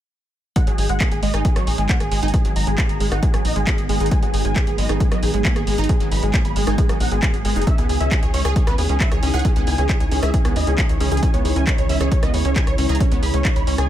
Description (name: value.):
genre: uplifting trance.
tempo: 135 BPM.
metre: 4/4.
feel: straight.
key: G# minor.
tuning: A4 = 436 Hz.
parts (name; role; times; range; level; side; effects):
big supersaw lead; melody; 0.6-13.9 s; G#4 to B5; -26 LUFS; equal; phaser, sidechain pumping, low-pass filter, ping-pong delay.
shimmering ambient pad; sustained chords; 1.3-13.9 s; C#3 to G#4; -28 LUFS; equal; chorus, built-in reverb, sidechain pumping.
wide unison pluck; arpeggios; 0.6-13.8 s; F#3 to C#5; -27 LUFS; right 3 dB; phaser, sidechain pumping, ping-pong delay.
electronic kick drum; drums; 0.6-13.5 s; none; -19 LUFS; equal; none.
punchy analog drum machine; drums; 0.6-13.9 s; handclaps, hi-hat, rim click; -27 LUFS; equal; none.
tight sequencer bass; bass; 0.7-13.9 s; F#1 to D#2; -22 LUFS; equal; sidechain pumping.
room: digital ambience.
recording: none.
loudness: -16 LUFS.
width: side -12 dB against mid.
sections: 0.6-13.9 A section.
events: none.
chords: 0.6 G#m7; 7.7 C#madd9.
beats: | 0.56 1.00 1.45 1.89 | 2.34 2.78 3.23 3.67 | 4.12 4.56 5.00 5.45 | 5.89 6.34 6.78 7.23 | 7.67 8.12 8.56 9.00 | 9.45 9.89 10.34 10.78 | 11.23 11.67 12.12 12.56 | 13.00 13.45.